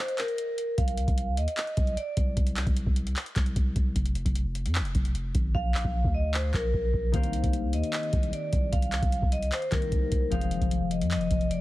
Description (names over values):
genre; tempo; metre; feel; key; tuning
hip hop, trap; 151 BPM; 4/4; half-time; C minor; A4 = 440 Hz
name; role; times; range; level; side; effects
vibraphone with medium hard mallets; melody; 0.0-2.3, 5.5-11.6 s; Bb4 to F5; -32 LUFS; right 1 dB; low-pass filter
booming analog drum machine; drums; 0.1-11.6 s; handclaps, hi-hat, kick drum; -28 LUFS; equal; none
long sustained 808-style bass; bass; 0.8-11.6 s; F1 to F2; -28 LUFS; equal; none
concert harp; accompaniment; 7.1-11.6 s; Eb3 to C5; -32 LUFS; left 7 dB; low-pass filter
room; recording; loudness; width
little or no reverb; heavily compressed radio sound; -25 LUFS; side -17 dB against mid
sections
0.0-11.6 A section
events
break 0.0-0.8; hi-hats muted 5.5-7.1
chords
0.0 N.C.; 4.0 Fm; 5.5 Bb; 7.1 Cm7; 10.3 Fm